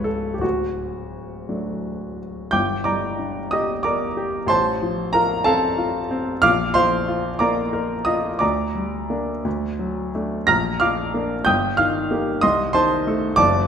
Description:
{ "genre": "classical, romantic character piece for solo piano", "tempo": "55-63 BPM (dotted quarters)", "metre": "6/8", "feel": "rubato", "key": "G minor", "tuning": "A4 = 439 Hz", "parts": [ { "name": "warm grand piano", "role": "solo", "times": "0.0-13.7 s", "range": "C#1 to Bb6", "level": "-19 LUFS", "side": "equal", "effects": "none" } ], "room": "wet recital hall reverb, RT60 1.5 s", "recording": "none", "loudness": "-19 LUFS", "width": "side -7 dB against mid", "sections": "0.0-2.5 A section; 2.5-13.7 B section", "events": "none", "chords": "0.4 D; 2.5 Gm; 4.5 F/A; 6.4 Bb; 8.4 Gm/D; 9.5 D; 10.5 Bb; 11.5 Eb/G; 12.4 Adim/C", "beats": "| 0.43 1.49 | 2.53 3.52 | 4.50 5.47 | 6.44 7.41 | 8.42 9.45 | 10.49 11.47 | 12.43 13.39" }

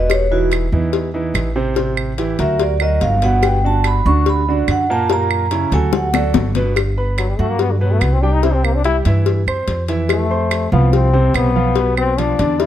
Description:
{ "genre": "Afro-Cuban jazz", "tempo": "144 BPM", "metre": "4/4", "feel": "straight", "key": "G major from 6.8 s", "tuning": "A4 = 440 Hz", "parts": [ { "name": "vibraphone with medium mallets", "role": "melody", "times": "0.0-6.3 s", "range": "F#4 to C#6", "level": "-19 LUFS", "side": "right 2 dB", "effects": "none" }, { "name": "warm concert grand piano", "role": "accompaniment", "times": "0.0-12.7 s", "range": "A#2 to C6", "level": "-21 LUFS", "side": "right 3 dB", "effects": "none" }, { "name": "upright bass", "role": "bass", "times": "0.0-12.7 s", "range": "E1 to G2", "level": "-17 LUFS", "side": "equal", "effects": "none" }, { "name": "claves", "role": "percussion", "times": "0.1-12.2 s", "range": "none", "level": "-25 LUFS", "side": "right 8 dB", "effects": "none" }, { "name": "cowbell and bongos", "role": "percussion", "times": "0.1-12.7 s", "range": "none", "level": "-21 LUFS", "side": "left 9 dB", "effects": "none" }, { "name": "bright trombone", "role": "second line", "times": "7.2-12.7 s", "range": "D3 to E4", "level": "-19 LUFS", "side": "left 6 dB", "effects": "none" } ], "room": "light reverb", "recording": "close, detailed microphones", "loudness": "-14 LUFS", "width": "side -11 dB against mid", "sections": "0.0-6.8 A section; 6.8-12.7 A section", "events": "vibraphone solo 0.0-6.8; drum fill 5.9-6.8; trombone solo 6.8-12.7", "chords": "0.1 E5; 1.8 Am7; 2.6 Gmaj7; 5.1 F#7; 5.9 D; 6.8 Gmaj7; 8.4 C; 10.1 Fmaj7; 11.8 Bdim", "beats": "| 0.10 0.52 0.94 1.35 | 1.77 2.19 2.60 3.02 | 3.44 3.85 4.27 4.68 | 5.10 5.52 5.93 6.35 | 6.77 7.18 7.60 8.02 | 8.43 8.85 9.27 9.68 | 10.10 10.52 10.93 11.35 | 11.77 12.18 12.60" }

